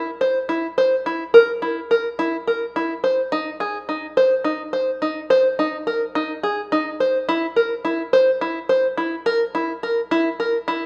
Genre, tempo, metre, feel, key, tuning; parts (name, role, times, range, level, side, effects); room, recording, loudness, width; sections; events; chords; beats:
contemporary instrumental, contemporary; 212 BPM (eighths); 7/8; straight; A4 = 439 Hz
open-back banjo; solo; 0.0-10.8 s; Eb4 to C5; -20 LUFS; equal
moderate concert hall reverb, RT60 1.9 s; faint mains hum; -21 LUFS; mono
0.0-10.9 A section
0.21 0.49 0.78 1.06 | 1.34 1.63 1.91 2.19 2.48 2.76 3.04 | 3.33 3.61 3.89 4.17 4.46 4.74 5.02 | 5.30 5.59 5.87 6.15 6.43 6.72 7.00 | 7.28 7.57 7.85 8.13 8.41 8.70 8.98 | 9.26 9.55 9.83 10.11 10.40 10.68